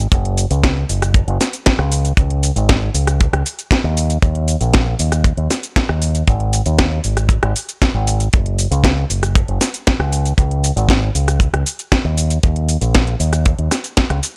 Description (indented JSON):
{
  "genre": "nu-disco, nu disco",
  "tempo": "117 BPM",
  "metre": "4/4",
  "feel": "straight",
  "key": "unclear",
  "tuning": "A4 = 440 Hz",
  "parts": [
    { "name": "fingered electric bass with an envelope filter", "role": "bass", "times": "0.0-14.2 s", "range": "Gb1 to Eb2", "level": "-19 LUFS", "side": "equal", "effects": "none" },
    { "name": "house drum kit", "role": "drums", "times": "0.0-14.3 s", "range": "hi-hat, rim click, shaker, snare drum", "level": "-21 LUFS", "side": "equal", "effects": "none" },
    { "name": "kick drum", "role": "drums", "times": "0.1-14.1 s", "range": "none", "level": "-16 LUFS", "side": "equal", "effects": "none" }
  ],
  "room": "little or no reverb",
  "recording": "dry, gritty hardware recording, transformer saturation, cassette tape",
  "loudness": "-16 LUFS",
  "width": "mono",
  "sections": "0.0-14.4 A section",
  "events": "none",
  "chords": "none",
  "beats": "| 0.12 0.64 1.15 1.66 | 2.18 2.69 3.20 3.71 | 4.23 4.74 5.25 5.76 | 6.28 6.79 7.30 7.82 | 8.33 8.84 9.36 9.87 | 10.38 10.89 11.41 11.92 | 12.43 12.95 13.46 13.97"
}